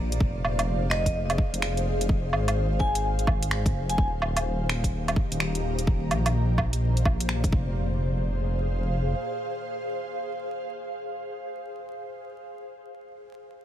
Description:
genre	future garage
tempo	127 BPM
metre	4/4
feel	swing 63% on 16ths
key	F dorian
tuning	A4 = 440 Hz
part	ethereal airy pad	sustained chords	0.0-12.3 s	Bb2 to Bb5	-32 LUFS	equal	ensemble chorus, built-in reverb, sidechain pumping
part	dark detuned saw bass	bass	0.0-9.1 s	Eb1 to Bb1	-27 LUFS	equal	tube saturation, sidechain pumping
part	garage drum kit	drums	0.1-7.5 s	finger snaps, hi-hat, woodblock	-30 LUFS	right 2 dB	none
part	electronic kick drum	drums	0.2-7.6 s	none	-24 LUFS	equal	none
part	vibraphone with hard mallets	melody	0.9-4.0 s	Eb5 to Ab5	-33 LUFS	left 1 dB	tape echo
room	digital ambience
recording	vinyl crackle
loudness	-24 LUFS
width	side -11 dB against mid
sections	0.0-7.8 A section; 7.8-11.5 B section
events	none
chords	0.2 Fm; 4.0 Eb; 5.9 Bbadd9; 7.5 Fm

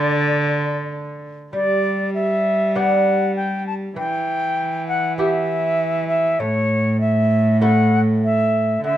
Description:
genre	classical, renaissance-style consort dance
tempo	98 BPM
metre	4/4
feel	straight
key	unclear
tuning	A4 = 439 Hz
part	silver concert flute	melody	0.0-9.0 s	C#5 to A5	-20 LUFS	left 1 dB	none
part	lute	accompaniment	0.0-9.0 s	A2 to A4	-25 LUFS	right 3 dB	none
part	rich cello	bass	0.0-9.0 s	A2 to G3	-20 LUFS	right 1 dB	none
room	light reverb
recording	dark, warm production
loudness	-17 LUFS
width	side -12 dB against mid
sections	0.0-1.5 A section; 1.5-9.0 B section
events	none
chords	0.0 D; 1.5 G; 4.0 Em; 6.4 A

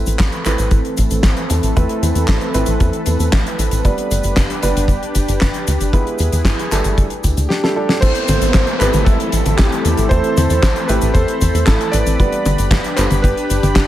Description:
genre	italo disco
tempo	115 BPM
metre	4/4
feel	straight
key	A minor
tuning	A4 = 440 Hz
part	lush unison pad	sustained chords	0.0-13.9 s	E3 to B5	-22 LUFS	equal	chorus
part	warm baby grand piano	stabs	0.0-13.3 s	G3 to C5	-23 LUFS	right 3 dB	vintage 12-bit sampler grit
part	tight sequencer bass	bass	0.0-13.9 s	G1 to E2	-18 LUFS	equal	none
part	damped 70s drum kit	drums	0.1-13.9 s	cabasa, crash cymbal, handclaps, hi-hat, snare drum, toms	-21 LUFS	left 1 dB	small room ambience
part	kick drum	drums	0.2-13.9 s	none	-16 LUFS	equal	small room ambience
part	clear electric grand piano	melody	7.5-13.9 s	D4 to D5	-21 LUFS	equal	tape echo
part	downlifter	sound effects	8.0-12.2 s	none	-25 LUFS	equal	none
room	light reverb, small room ambience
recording	none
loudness	-13 LUFS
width	side -13 dB against mid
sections	0.0-8.0 A section; 8.0-13.9 B section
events	drum fill 7.5-8.0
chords	0.0 Amadd9; 3.8 G; 5.9 E/G#; 7.0 Gsus2; 8.0 Amadd9; 12.2 G

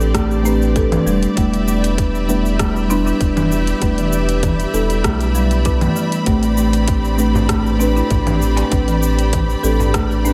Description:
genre	organic downtempo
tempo	98 BPM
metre	4/4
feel	swing 53% on 16ths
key	A minor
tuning	A4 = 440 Hz
part	muted felt-like synth keys	accompaniment	0.0-10.3 s	G3 to B4	-23 LUFS	equal	chorus, sidechain pumping, digital delay, shimmer reverb
part	clear symphonic string section	sustained chords	0.0-10.3 s	C4 to B5	-27 LUFS	equal	sidechain pumping, shimmer reverb
part	folk marimba with medium mallets	arpeggios	0.0-10.3 s	E3 to A4	-24 LUFS	equal	digital delay, shimmer reverb
part	round analog bass	bass	0.0-10.3 s	E1 to B1	-21 LUFS	equal	sidechain pumping
part	deep house drum kit	drums	0.0-10.3 s	cabasa, congas, hi-hat, rim click	-26 LUFS	equal	overdrive
part	electronic kick drum	drums	0.1-10.1 s	none	-21 LUFS	equal	none
part	darbuka	percussion	7.3-10.2 s	none	-29 LUFS	equal	none
room	light reverb, digital ambience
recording	none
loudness	-17 LUFS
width	mono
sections	0.0-10.3 A section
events	none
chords	0.0 Am11; 1.4 Em7; 6.3 Am11

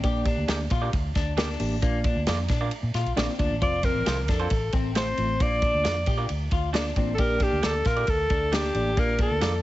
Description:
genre	uptempo 1960s-style soul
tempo	134 BPM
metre	4/4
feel	straight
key	unclear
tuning	A4 = 441 Hz
part	mellow reed electric piano	accompaniment	0.0-9.6 s	F3 to D5	-31 LUFS	equal	fast tremolo
part	electric guitar through a small old amp	riff	0.0-9.4 s	Bb3 to G4	-34 LUFS	left 6 dB	none
part	vintage muted fingered electric bass	bass	0.0-9.6 s	F1 to Bb2	-29 LUFS	equal	none
part	warm soul drum kit	drums	0.0-9.5 s	hi-hat, kick drum, ride cymbal, snare drum	-27 LUFS	equal	none
part	electric guitar through a small old amp	stabs	0.5-9.5 s	C4 to D5	-35 LUFS	right 6 dB	none
part	breathy alto saxophone	melody	3.6-9.6 s	G4 to D5	-26 LUFS	equal	tape echo
room	light reverb, small room ambience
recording	heavily compressed radio sound, nothing above 7.9 kHz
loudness	-22 LUFS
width	side -16 dB against mid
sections	0.0-9.6 A section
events	none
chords	0.0 Gm/Bb; 1.8 Bb; 3.6 F; 5.4 Bb; 7.2 Gm/Bb; 9.0 Bb

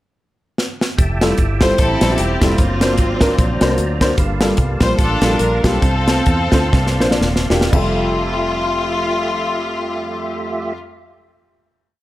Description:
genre	uptempo gospel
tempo	112-151 BPM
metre	4/4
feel	swing 57% on 8ths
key	F major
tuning	A4 = 440 Hz
part	crisp fusion drum kit	drums	0.6-7.9 s	crash cymbal, hi-hat, kick drum, snare drum	-18 LUFS	equal	none
part	clear French horn section	sustained chords	1.0-10.7 s	F3 to E5	-31 LUFS	right 1 dB	none
part	tonewheel organ	sustained chords	1.0-10.7 s	F#3 to C6	-27 LUFS	right 2 dB	slow rotary speaker, overdrive, chorus vibrato
part	fingered electric bass	bass	1.0-10.7 s	Eb1 to E2	-20 LUFS	equal	none
part	dark upright piano	accompaniment	1.2-10.8 s	F2 to E5	-21 LUFS	left 1 dB	none
part	bright studio string section	melody	1.6-10.7 s	Bb3 to C5	-20 LUFS	left 2 dB	none
room	little or no reverb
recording	none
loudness	-14 LUFS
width	side -15 dB against mid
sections	0.0-1.0 pickup bar; 1.0-7.7 breakdown; 7.7-12.0 final chord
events	drum fill 0.6-1.0, 6.7-7.7; slowing down 4.2-7.7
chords	0.0 N.C.; 1.0 Fmaj9; 2.6 D7alt/F#; 4.2 Gm9; 5.8 F/C; 6.7 C9sus4; 7.7 Fmaj9

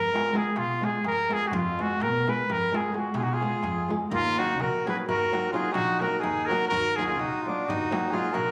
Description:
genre	balkan folk, Balkan wedding band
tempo	254 BPM (eighths)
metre	11/8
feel	straight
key	Eb minor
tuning	A4 = 440 Hz
part	mellow trumpet	melody	0.0-8.5 s	F4 to Cb5	-29 LUFS	equal	none
part	upright bass	bass	0.0-8.5 s	Bb1 to Cb3	-35 LUFS	equal	none
part	darbuka	percussion	0.0-8.5 s	none	-42 LUFS	equal	none
part	flamenco guitar	accompaniment	0.1-8.3 s	Gb3 to Ab4	-34 LUFS	equal	none
part	accordion	second line	3.1-8.5 s	Bb3 to Ab4	-34 LUFS	equal	none
room	moderate scoring stage reverb, RT60 1.5 s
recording	recorded on a phone in the room, club reverb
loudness	-27 LUFS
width	mono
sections	0.0-8.5 A section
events	none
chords	0.0 Fdim; 4.1 Ebm

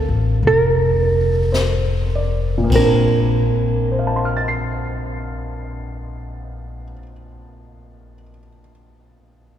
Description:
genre	jazz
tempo	50-58 BPM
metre	4/4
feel	swing 68% on 8ths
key	Bb major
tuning	A4 = 440 Hz
part	hollow-body jazz guitar	melody	0.0-7.0 s	Bb4	-20 LUFS	right 3 dB	none
part	warm concert grand piano	accompaniment	0.0-9.6 s	Bb2 to C7	-23 LUFS	left 1 dB	none
part	upright bass	bass	0.0-6.9 s	F1 to Bb1	-20 LUFS	left 1 dB	none
part	jazz brush drum kit	drums	0.4-3.7 s	brushed snare drum, crash cymbal, hi-hat, kick drum, snare drum	-26 LUFS	left 2 dB	none
room	wet cathedral reverb, RT60 5.1 s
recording	recorded in a church or concert hall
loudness	-15 LUFS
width	side -10 dB against mid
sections	0.0-2.7 A section; 2.7-7.5 B section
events	slowing down 0.0-2.7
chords	0.0 Bb; 2.7 Bbmaj7

